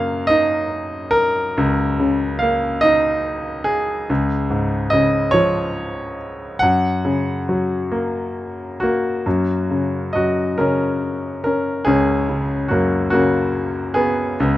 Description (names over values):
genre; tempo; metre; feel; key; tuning
classical, lyrical solo piano; 47 BPM (dotted quarters); 6/8; rubato; F# major; A4 = 440 Hz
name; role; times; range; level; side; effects
bright concert grand piano; solo; 0.0-14.6 s; C#2 to F#5; -17 LUFS; equal; none
room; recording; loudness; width
light reverb; close, detailed microphones; -17 LUFS; side -14 dB against mid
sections
0.0-9.3 A section; 9.3-14.6 A section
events
none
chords
0.0 F#69; 4.1 C#; 6.6 F#; 9.3 F#add9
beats
0.29 | 1.57 2.84 | 4.10 5.35 | 6.62 7.92 | 9.26 10.57 | 11.86 13.12 | 14.38